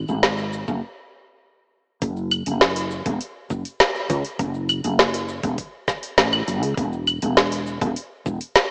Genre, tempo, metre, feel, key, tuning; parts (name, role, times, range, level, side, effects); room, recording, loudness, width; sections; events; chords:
sunset chillout; 101 BPM; 4/4; straight; A4 = 439 Hz
woody fretless electric bass; bass; 0.0-8.4 s; E1 to C#2; -27 LUFS; equal; analog chorus
smooth R&B drum kit; drums; 0.1-8.7 s; cabasa, claves, hi-hat, snare drum; -22 LUFS; equal
electronic kick drum; drums; 0.7-8.4 s; -34 LUFS; equal
moderate lush hall reverb, RT60 2.1 s; worn, warbling old tape, cassette tape, warbly pitch drift, small speaker sound; -23 LUFS; mono
0.0-2.0 A section; 2.0-8.7 B section
stop 0.8-2.0